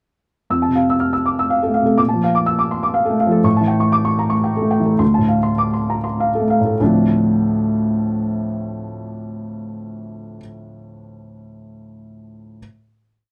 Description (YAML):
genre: neoclassical minimalist piano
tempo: 94-124 BPM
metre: 3/4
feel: rubato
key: D minor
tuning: A4 = 436 Hz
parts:
  - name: felt-muted upright piano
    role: solo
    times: 0.5-12.6 s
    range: D2 to F6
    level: -18 LUFS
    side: equal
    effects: none
room: moderate booth ambience, RT60 0.3 s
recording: none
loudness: -17 LUFS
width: mono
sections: 0.5-6.8 A section; 6.8-10.4 final chord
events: slowing down 2.7-6.8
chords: 0.5 Fmaj7; 2.0 Bbmaj7; 3.4 A7; 5.0 Dm7